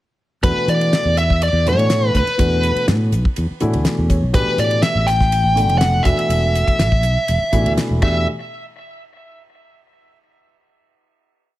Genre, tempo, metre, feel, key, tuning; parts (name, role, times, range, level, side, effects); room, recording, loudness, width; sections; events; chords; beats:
electric jazz fusion; 122 BPM; 4/4; straight; E dorian; A4 = 440 Hz
bluesy overdriven lead guitar; melody; 0.4-8.3 s; B4 to G5; -19 LUFS; equal; distortion
dark grand piano; accompaniment; 0.4-8.3 s; B2 to F#5; -23 LUFS; left 1 dB
fingered electric bass; bass; 0.4-8.2 s; E1 to E3; -18 LUFS; equal
damped 70s drum kit; drums; 0.4-8.1 s; crash cymbal, hi-hat, kick drum, ride cymbal, snare drum; -21 LUFS; equal
light reverb; -14 LUFS; side -15 dB against mid
0.4-8.3 A section; 8.3-10.2 final hit
grand piano fill 3.4-4.3
0.4 E9sus4; 4.3 A9sus4; 6.1 E9sus4; 8.0 Em; 8.3 N.C.
| 0.43 0.92 1.41 1.90 | 2.39 2.88 3.36 3.85 | 4.34 4.83 5.32 5.81 | 6.30 6.79 7.28 7.78